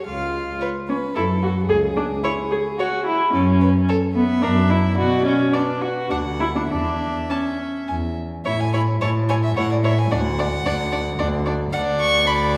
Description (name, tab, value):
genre	quick classical-period movement for string quartet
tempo	109 BPM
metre	3/4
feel	rubato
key	A major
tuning	A4 = 441 Hz
part	rich violin	melody	0.0-12.6 s	G#4 to C#6	-29 LUFS	equal	none
part	rich viola	accompaniment	0.1-12.6 s	B3 to G#4	-25 LUFS	equal	none
part	warm cello	bass	0.1-12.6 s	C#2 to B2	-24 LUFS	equal	none
part	warm violin	second line	0.6-12.6 s	A4 to A5	-30 LUFS	equal	none
room	wet recital hall reverb, RT60 1.7 s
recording	heard from further back in the room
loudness	-21 LUFS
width	mono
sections	0.0-8.5 A section; 8.5-12.6 B section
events	none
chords	0.1 C#7; 1.2 F#m; 1.7 C#5; 3.3 F#5; 4.4 F#7(no3); 5.0 Bm; 6.1 D; 6.7 A/E (rootless); 7.9 N.C.; 8.5 A; 10.1 D